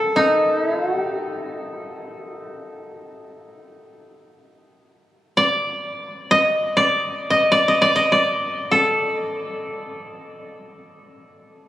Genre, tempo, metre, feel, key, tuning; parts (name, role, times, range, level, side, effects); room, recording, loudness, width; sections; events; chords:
japanese traditional, Japanese chamber music; free time; A4 = 439 Hz
koto; solo; 0.0-10.9 s; G4 to Eb5; -18 LUFS; equal
wet cathedral reverb, RT60 7.0 s; recorded on a phone in the room, studio reverb; -17 LUFS; side -13 dB against mid
0.0-4.5 A section; 4.5-11.7 A section